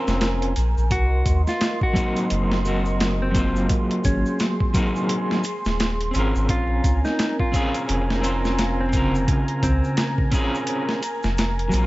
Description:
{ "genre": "trip hop", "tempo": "86 BPM", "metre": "4/4", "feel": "swing 60% on 16ths", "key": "Bb minor", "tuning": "A4 = 441 Hz", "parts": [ { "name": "electric guitar at the edge of break-up", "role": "accompaniment", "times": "0.0-11.9 s", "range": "Db3 to C5", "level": "-24 LUFS", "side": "equal", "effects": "tremolo, tape echo" }, { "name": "dark analog pad", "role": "sustained chords", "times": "0.0-11.9 s", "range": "Ab4 to C6", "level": "-30 LUFS", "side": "right 1 dB", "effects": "chorus" }, { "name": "soft dub sub bass", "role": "bass", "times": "0.1-11.9 s", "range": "Eb1 to Eb2", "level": "-23 LUFS", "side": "equal", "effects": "none" }, { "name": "boom bap sampler-style drum kit", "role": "drums", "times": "0.1-11.9 s", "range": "hi-hat, kick drum, snare drum", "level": "-24 LUFS", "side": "equal", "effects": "overdrive" }, { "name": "egg shaker", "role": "percussion", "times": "0.1-11.9 s", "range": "none", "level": "-42 LUFS", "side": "left 2 dB", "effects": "none" }, { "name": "mellow electric guitar", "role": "melody", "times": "0.9-10.0 s", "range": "C4 to Gb4", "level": "-29 LUFS", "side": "equal", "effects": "dub echo" } ], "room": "light reverb", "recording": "vinyl crackle, nothing above 7.7 kHz", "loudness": "-19 LUFS", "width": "side -18 dB against mid", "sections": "0.0-11.9 A section", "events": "none", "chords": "0.0 Bbm7; 0.9 Cm7b5; 3.7 Ab7; 6.5 Bbm7", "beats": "0.21 | 0.91 1.61 2.31 3.00 | 3.70 4.40 5.10 5.79 | 6.49 7.19 7.89 8.59 | 9.28 9.98 10.68 11.38" }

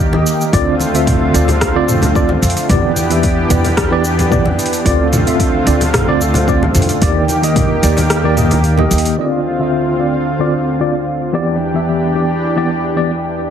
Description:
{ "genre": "sunset chillout", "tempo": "111 BPM", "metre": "4/4", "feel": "straight", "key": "unclear", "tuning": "A4 = 441 Hz", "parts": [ { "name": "lush unison pad", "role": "sustained chords", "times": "0.0-13.5 s", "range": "D2 to G4", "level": "-17 LUFS", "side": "equal", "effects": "chorus" }, { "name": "upright bass", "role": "bass", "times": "0.0-9.1 s", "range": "D2 to F2", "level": "-17 LUFS", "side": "equal", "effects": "tube saturation" }, { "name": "deep house drum kit", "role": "drums", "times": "0.0-13.5 s", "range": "cabasa, hi-hat, rim click, toms", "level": "-19 LUFS", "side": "equal", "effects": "overdrive, low-pass filter on perc, low-pass filter on toms, low-pass filter on snare, low-pass filter on hats, low-pass filter on room" }, { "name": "tine electric piano", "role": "accompaniment", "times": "0.1-13.1 s", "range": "D3 to E5", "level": "-17 LUFS", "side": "equal", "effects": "overdrive, medium stereo tremolo, auto-pan, low-pass filter, digital delay" }, { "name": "congas", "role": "percussion", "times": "0.1-8.9 s", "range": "none", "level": "-21 LUFS", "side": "left 1 dB", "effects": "none" }, { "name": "electronic kick drum", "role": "drums", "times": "0.5-7.7 s", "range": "none", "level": "-18 LUFS", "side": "equal", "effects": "overdrive" } ], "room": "moderate plate reverb, RT60 1.2 s", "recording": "heavily compressed radio sound, lossy compression artefacts", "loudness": "-12 LUFS", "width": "side -8 dB against mid", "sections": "0.0-9.2 A section; 9.2-13.5 B section", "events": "kick drops out 8.1-9.2; filter sweep on tine electric piano 9.2-13.5", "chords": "0.0 Eb; 0.5 Dm7; 2.7 Em7; 4.9 Dm7; 7.0 Ebmaj7; 9.2 Dm7; 11.3 Em7", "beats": "| 0.53 1.07 1.61 2.15 | 2.69 3.23 3.78 4.32 | 4.86 5.40 5.94 6.48 | 7.02 7.56 8.10 8.64 | 9.18 9.72 10.26 10.80 | 11.34 11.88 12.42 12.96" }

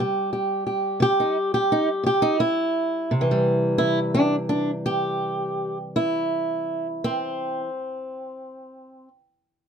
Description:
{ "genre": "acoustic country blues, solo or duo", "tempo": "55-60 BPM (dotted quarters)", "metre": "12/8", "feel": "straight", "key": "C major", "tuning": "A4 = 439 Hz", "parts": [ { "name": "fingerpicked old ladder-braced acoustic guitar", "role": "solo", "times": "0.0-9.1 s", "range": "C3 to G4", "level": "-22 LUFS", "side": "right 1 dB", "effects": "none" } ], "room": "light reverb", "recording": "close, detailed microphones", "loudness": "-21 LUFS", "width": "side -7 dB against mid", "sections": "0.0-3.1 A section; 3.1-7.5 B section", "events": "slowing down 0.0-3.1", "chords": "0.0 C", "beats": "0.00 1.01 2.04 | 3.11 4.20 5.29 6.38" }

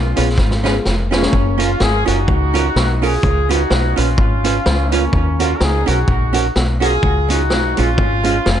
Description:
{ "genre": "ska", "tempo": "126 BPM", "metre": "4/4", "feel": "swing 56% on 8ths", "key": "F# major", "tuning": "A4 = 440 Hz", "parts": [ { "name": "clear horn section", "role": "melody", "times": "0.0-8.6 s", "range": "A#3 to A#4", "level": "-20 LUFS", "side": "left 1 dB", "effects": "tape echo" }, { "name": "deep dub fingered electric bass", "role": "bass", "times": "0.0-8.6 s", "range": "E#1 to D#2", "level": "-18 LUFS", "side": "equal", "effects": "none" }, { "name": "archtop guitar, miked and amplified", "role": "accompaniment", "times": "0.2-8.4 s", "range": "G#3 to B4", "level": "-21 LUFS", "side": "right 8 dB", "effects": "tape echo" }, { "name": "dark upright piano", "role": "stabs", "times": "0.2-1.2 s", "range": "B3 to G#4", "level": "-24 LUFS", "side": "left 6 dB", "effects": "none" }, { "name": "vintage drum kit", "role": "drums", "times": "0.2-8.6 s", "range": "hi-hat, kick drum, snare drum", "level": "-19 LUFS", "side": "equal", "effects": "none" } ], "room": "little or no reverb", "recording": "nothing above 10.9 kHz", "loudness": "-13 LUFS", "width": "side -10 dB against mid", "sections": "0.0-1.3 A section; 1.3-8.6 A section", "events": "drum fill 0.4-1.3", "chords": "0.0 C#7; 1.3 F#maj7; 3.2 C#7; 5.1 D#m7; 7.0 C#", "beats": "0.38 0.85 | 1.33 1.80 2.28 2.75 | 3.23 3.70 4.18 4.65 | 5.13 5.60 6.08 6.55 | 7.03 7.50 7.98 8.46" }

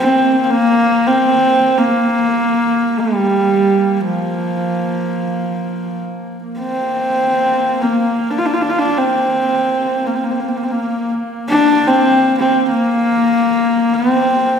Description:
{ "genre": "mongolian traditional, Mongolian folk", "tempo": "free time", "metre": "none", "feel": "none", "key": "Bb gong mode", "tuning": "A4 = 440 Hz", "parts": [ { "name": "rich horsehead fiddle", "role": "melody", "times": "0.0-14.6 s", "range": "F3 to F4", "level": "-14 LUFS", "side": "equal", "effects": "none" }, { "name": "warm horsehead fiddle", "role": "drone", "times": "0.0-14.6 s", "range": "Bb3", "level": "-24 LUFS", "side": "left 1 dB", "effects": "none" } ], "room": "wet scoring stage reverb, RT60 1.7 s", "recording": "recorded in a church or concert hall", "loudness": "-13 LUFS", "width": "side -7 dB against mid", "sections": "0.0-14.6 A section", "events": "none", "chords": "none", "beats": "free time" }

